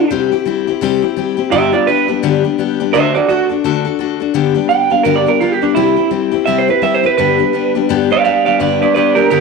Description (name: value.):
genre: rock.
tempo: 170 BPM.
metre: 4/4.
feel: swing 60% on 8ths.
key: G major.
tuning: A4 = 440 Hz.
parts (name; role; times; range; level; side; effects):
electric guitar through a small old amp; melody; 0.0-9.4 s; D4 to G5; -14 LUFS; right 10 dB; tape echo.
picked steel-string acoustic guitar; accompaniment; 0.0-9.4 s; G2 to A4; -14 LUFS; left 12 dB; none.
room: moderate plate reverb, RT60 2.8 s.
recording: 1960s-style stereo with parts hard left and right.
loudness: -12 LUFS.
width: side -4 dB against mid.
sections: 0.0-4.3 A section; 4.3-9.4 B section.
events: clean electric guitar solo 4.3-9.4.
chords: 0.1 C; 1.5 G; 2.9 D; 4.3 G; 5.8 C; 7.2 G.